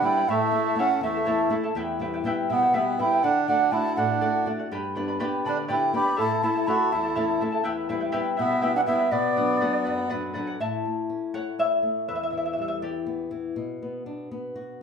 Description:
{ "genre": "andean folk, Andean ensemble", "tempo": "81 BPM (dotted quarters)", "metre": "6/8", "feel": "straight", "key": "unclear", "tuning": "A4 = 441 Hz", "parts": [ { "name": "mellow large quena", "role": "melody", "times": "0.0-10.1 s", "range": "D5 to B5", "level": "-24 LUFS", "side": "right 2 dB", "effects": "none" }, { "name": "melodica", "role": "second line", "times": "0.0-10.1 s", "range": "A3 to G4", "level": "-27 LUFS", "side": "right 2 dB", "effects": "none" }, { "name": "charango", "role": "accompaniment", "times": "0.0-13.3 s", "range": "E4 to B5", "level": "-29 LUFS", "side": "left 2 dB", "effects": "none" }, { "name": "flamenco guitar", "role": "accompaniment", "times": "0.0-14.8 s", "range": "E2 to G4", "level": "-29 LUFS", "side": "left 2 dB", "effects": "none" } ], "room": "wet large studio reverb, RT60 0.8 s", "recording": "band playing live in one room", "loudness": "-22 LUFS", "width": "side -6 dB against mid", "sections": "0.0-10.6 A section; 10.6-14.8 B section", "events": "charango solo 10.6-14.8", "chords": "0.3 A; 1.8 Em; 3.2 D; 4.7 G; 6.2 A; 7.7 Em; 9.1 Bm; 10.6 A; 12.1 Em; 13.6 Bm", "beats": "| 0.28 1.02 | 1.76 2.49 | 3.23 3.97 | 4.71 5.44 | 6.18 6.92 | 7.66 8.39 | 9.13 9.87 | 10.61 11.35 | 12.09 12.83 | 13.57 14.31" }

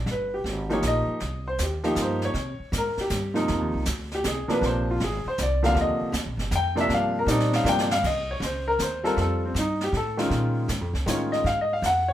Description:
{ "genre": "jazz piano trio", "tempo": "158 BPM", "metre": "3/4", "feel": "swing 66% on 8ths", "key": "Eb major", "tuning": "A4 = 439 Hz", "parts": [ { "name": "warm concert grand piano", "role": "melody", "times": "0.0-12.1 s", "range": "C3 to G5", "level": "-24 LUFS", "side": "left 1 dB", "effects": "none" }, { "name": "upright bass", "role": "bass", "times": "0.0-12.1 s", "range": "G1 to C3", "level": "-28 LUFS", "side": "equal", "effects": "none" }, { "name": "jazz brush drum kit", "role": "drums", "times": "0.1-12.1 s", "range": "brushed snare drum, crash cymbal, hi-hat, kick drum, snare drum", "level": "-33 LUFS", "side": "right 2 dB", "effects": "none" } ], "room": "moderate studio reverb, RT60 0.6 s", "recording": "band playing live in one room", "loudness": "-23 LUFS", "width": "side -12 dB against mid", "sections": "0.0-8.0 A section; 8.0-12.1 A section", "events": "grand piano solo 0.0-12.1; drum fill 7.3-8.0", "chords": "0.1 Gm7b13; 1.2 Cm7; 2.3 C5; 3.5 F7sus4; 4.6 Bb9; 5.8 Ebmaj9; 8.0 Eb7(no3)/C; 9.2 F7; 10.3 Bbm7; 11.4 Ab5", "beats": "| 0.06 0.44 0.82 | 1.20 1.58 1.96 | 2.34 2.72 3.10 | 3.48 3.86 4.24 | 4.61 4.99 5.37 | 5.75 6.13 6.51 | 6.89 7.27 7.65 | 8.03 8.40 8.79 | 9.16 9.54 9.92 | 10.30 10.68 11.06 | 11.44 11.82" }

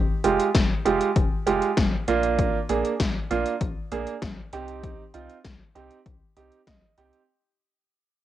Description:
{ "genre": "synth-pop", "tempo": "98 BPM", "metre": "4/4", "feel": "straight", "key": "unclear", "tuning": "A4 = 440 Hz", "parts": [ { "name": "round analog bass", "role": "bass", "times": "0.0-7.1 s", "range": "F1 to C2", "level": "-34 LUFS", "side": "left 2 dB", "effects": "none" }, { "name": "warm grand piano", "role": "accompaniment", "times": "0.2-7.3 s", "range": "Ab3 to G5", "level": "-24 LUFS", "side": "right 5 dB", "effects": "none" }, { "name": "80s electronic pad drums", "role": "drums", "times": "0.2-7.3 s", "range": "hi-hat, kick drum, snare drum", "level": "-24 LUFS", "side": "left 2 dB", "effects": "overdrive, cassette tape" } ], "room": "light reverb, digital ambience", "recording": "home recording on cassette", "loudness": "-21 LUFS", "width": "side -12 dB against mid", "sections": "0.0-7.3 A section", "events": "fade-out 0.0-7.3; grand piano fill 6.4-7.3", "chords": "0.0 Fmadd9; 2.1 Bb; 4.5 Cm", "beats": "0.55 1.16 1.77 | 2.39 3.00 3.61 4.22 | 4.83 5.45 6.06 6.67" }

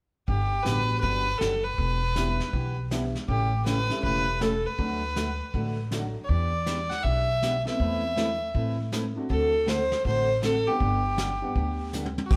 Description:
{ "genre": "country, western swing", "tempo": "160 BPM", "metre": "4/4", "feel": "swing 64% on 8ths", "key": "G major", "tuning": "A4 = 444 Hz", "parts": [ { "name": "rich fiddle", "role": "melody", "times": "0.3-12.4 s", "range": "F#4 to F#5", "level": "-30 LUFS", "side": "equal", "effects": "none" }, { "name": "picked steel-string acoustic guitar", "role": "accompaniment", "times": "0.3-12.4 s", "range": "C#3 to B4", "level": "-36 LUFS", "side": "equal", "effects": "none" }, { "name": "upright bass", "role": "bass", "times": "0.3-12.4 s", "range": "E1 to A2", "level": "-32 LUFS", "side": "equal", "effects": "none" }, { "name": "vintage brush drum kit", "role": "drums", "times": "0.3-12.4 s", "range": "brushed snare drum, crash cymbal, hi-hat, kick drum, snare drum, toms", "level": "-33 LUFS", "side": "equal", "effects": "none" }, { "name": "warm upright piano", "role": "accompaniment", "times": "0.6-11.9 s", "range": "F#3 to F#5", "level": "-37 LUFS", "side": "equal", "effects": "none" } ], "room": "moderate stone room reverb, RT60 1.2 s", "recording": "band playing live in one room", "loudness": "-27 LUFS", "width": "mono", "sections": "0.3-12.3 A section", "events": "drum fill 11.9-12.3", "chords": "0.3 Gmaj7; 1.8 Em7; 3.3 A7; 4.8 D; 6.3 Em7; 7.8 Amadd9/E; 9.3 D7; 10.8 Gmaj7", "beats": "| 0.28 0.66 1.03 1.41 | 1.78 2.16 2.54 2.91 | 3.29 3.66 4.04 4.41 | 4.79 5.17 5.54 5.92 | 6.29 6.67 7.04 7.42 | 7.80 8.17 8.55 8.92 | 9.30 9.68 10.05 10.43 | 10.80 11.18 11.56 11.94 | 12.31" }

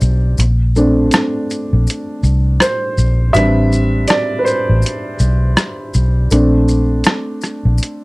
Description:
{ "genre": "lo-fi hip hop", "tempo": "81 BPM", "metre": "4/4", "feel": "swing 62% on 16ths", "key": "unclear", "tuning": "A4 = 440 Hz", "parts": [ { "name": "dark upright piano", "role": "accompaniment", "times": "0.0-8.0 s", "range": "G3 to E5", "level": "-17 LUFS", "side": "equal", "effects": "cassette tape, low-pass filter" }, { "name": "vintage muted fingered electric bass", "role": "bass", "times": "0.0-7.8 s", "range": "A1 to C2", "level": "-13 LUFS", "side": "equal", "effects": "none" }, { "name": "lo-fi sampler-style drum kit", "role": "drums", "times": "0.0-8.0 s", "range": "hi-hat, rim click, shaker", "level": "-16 LUFS", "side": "equal", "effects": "overdrive" }, { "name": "maracas", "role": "percussion", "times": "0.0-8.0 s", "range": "none", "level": "-34 LUFS", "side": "left 5 dB", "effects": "none" } ], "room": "light reverb", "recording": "cassette tape", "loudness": "-12 LUFS", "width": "side -23 dB against mid", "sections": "0.0-8.0 A section", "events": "break 0.0-8.0; upright piano solo 0.0-8.0", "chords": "0.4 Bbmaj9; 3.3 Am11; 6.3 Bbmaj9", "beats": "| 0.38 1.12 1.86 2.61 | 3.35 4.09 4.83 5.57 | 6.31 7.05 7.79" }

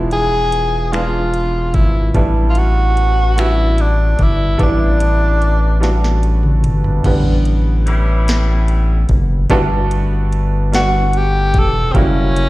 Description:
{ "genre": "slow six-eight R&B", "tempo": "49 BPM (dotted quarters)", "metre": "6/8", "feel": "straight", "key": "unclear", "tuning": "A4 = 439 Hz", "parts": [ { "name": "clear baby grand piano", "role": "accompaniment", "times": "0.0-12.5 s", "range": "D3 to F#5", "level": "-21 LUFS", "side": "right 2 dB", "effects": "slapback echo" }, { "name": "rubbery square bass", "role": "bass", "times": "0.0-12.5 s", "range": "E1 to A1", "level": "-15 LUFS", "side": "equal", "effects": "none" }, { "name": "breathy tenor saxophone", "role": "melody", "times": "0.1-6.2, 10.7-12.5 s", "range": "C4 to A4", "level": "-18 LUFS", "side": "equal", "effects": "slapback echo" }, { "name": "smooth R&B drum kit", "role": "drums", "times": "0.1-12.5 s", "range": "crash cymbal, finger snaps, hi-hat, kick drum, snare drum, toms", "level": "-17 LUFS", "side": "equal", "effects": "none" }, { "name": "warm horn section", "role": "stabs", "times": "7.9-9.1 s", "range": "A2 to E4", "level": "-24 LUFS", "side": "left 1 dB", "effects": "slapback echo" } ], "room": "little or no reverb", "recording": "live gig heard through the venue's PA, recital hall reverb", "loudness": "-12 LUFS", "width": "side -18 dB against mid", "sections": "0.0-7.0 A section; 7.0-9.5 B section; 9.5-12.5 C section", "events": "drum fill 5.8-7.0; grand piano solo 7.0-9.5", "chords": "0.0 E7b9; 2.1 A7sus4; 9.5 Gmaj9; 11.9 F#7b9", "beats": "0.93 | 2.15 3.37 | 4.60 5.82 | 7.05 8.27 | 9.50 10.72 | 11.95" }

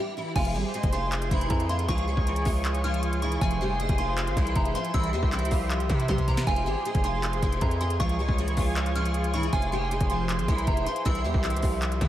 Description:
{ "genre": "hip hop, trap", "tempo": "157 BPM", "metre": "4/4", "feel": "half-time", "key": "F harmonic minor", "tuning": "A4 = 436 Hz", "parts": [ { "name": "picked steel-string acoustic guitar", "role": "melody", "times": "0.0-12.1 s", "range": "E3 to Ab4", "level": "-31 LUFS", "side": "equal", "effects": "ensemble chorus, diffuse ambient delay" }, { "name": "soft synth bell", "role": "second line", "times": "0.4-12.1 s", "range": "Ab5 to F6", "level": "-34 LUFS", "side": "equal", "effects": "chorus, phaser, diffuse ambient delay" }, { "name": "warm analog pad", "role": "sustained chords", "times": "0.4-12.1 s", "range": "G4 to Db6", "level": "-33 LUFS", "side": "equal", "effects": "chorus" }, { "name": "distorted 808-style bass", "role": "bass", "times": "0.4-12.1 s", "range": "F1 to C3", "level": "-28 LUFS", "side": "equal", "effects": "distortion" }, { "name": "trap drum kit", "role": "drums", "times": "0.4-12.1 s", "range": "crash cymbal, handclaps, hi-hat, kick drum, snare drum", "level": "-29 LUFS", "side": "equal", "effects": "none" } ], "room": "moderate huge ambient reverb, RT60 4.5 s", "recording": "dreamy mix soaked in reverb, vinyl crackle", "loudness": "-24 LUFS", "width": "side -12 dB against mid", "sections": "0.4-12.1 A section", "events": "stop 0.0-0.4; drum fill 6.1-6.5", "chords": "0.4 Fm; 1.9 Db; 3.4 Fm; 4.9 C; 6.5 Fm; 8.0 Db; 9.5 Fm; 11.1 C", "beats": "| 0.36 0.74 1.12 1.50 | 1.89 2.27 2.65 3.03 | 3.41 3.79 4.18 4.56 | 4.94 5.32 5.71 6.09 | 6.47 6.85 7.24 7.62 | 8.00 8.38 8.76 9.15 | 9.53 9.91 10.29 10.67 | 11.06 11.44 11.82" }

